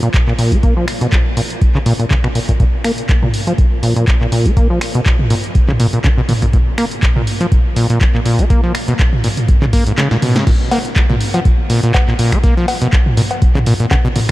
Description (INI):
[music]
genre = acid house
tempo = 122 BPM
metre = 4/4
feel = swing 55% on 16ths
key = Bb phrygian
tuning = A4 = 440 Hz
[part]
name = acid bass, saw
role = riff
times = 0.0-14.3 s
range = Ab2 to Bb3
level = -16 LUFS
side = equal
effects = overdrive, sidechain pumping, tape echo
[part]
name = punchy analog drum machine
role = drums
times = 0.0-14.3 s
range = cowbell, crash cymbal, finger snaps, handclaps, hi-hat, snare drum, toms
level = -20 LUFS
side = equal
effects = none
[part]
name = electronic kick drum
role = drums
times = 0.1-14.3 s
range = none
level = -13 LUFS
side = equal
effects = none
[sound]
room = light reverb, digital ambience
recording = none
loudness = -11 LUFS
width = side -17 dB against mid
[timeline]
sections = 0.0-10.5 A section; 10.5-14.3 B section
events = filter sweep on acid bass 0.0-10.5; kick drops out 10.0-10.5; drum fill 10.0-10.5; drop 10.5-14.3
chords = none